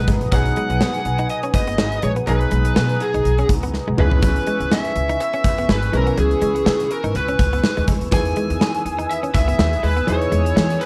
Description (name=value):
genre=1980s-style pop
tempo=123 BPM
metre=4/4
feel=swing 55% on 16ths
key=B major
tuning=A4 = 441 Hz
part: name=lead guitar through a small cranked amp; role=melody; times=0.0-10.9 s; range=G#4 to G#5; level=-25 LUFS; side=equal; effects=overdrive, slapback echo
part: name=clear baby grand piano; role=accompaniment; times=0.0-10.9 s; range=D#3 to B4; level=-29 LUFS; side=equal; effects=none
part: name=warm analog pad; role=sustained chords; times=0.0-10.9 s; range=B4 to E6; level=-32 LUFS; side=equal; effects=chorus
part: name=direct-recorded clean electric guitar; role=riff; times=0.0-10.8 s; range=F#3 to D#4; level=-29 LUFS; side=equal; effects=subtle chorus, slapback echo
part: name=upright bass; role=bass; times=0.0-10.7 s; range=F#1 to E3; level=-24 LUFS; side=equal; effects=none
part: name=gated 80s drum kit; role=drums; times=0.1-10.9 s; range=hi-hat, kick drum, snare drum, toms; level=-22 LUFS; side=equal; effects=none
room=little or no reverb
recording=none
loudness=-19 LUFS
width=mono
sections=0.0-10.9 A section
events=drum fill 3.7-4.2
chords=0.0 B6; 4.0 C#m7; 8.1 Emaj7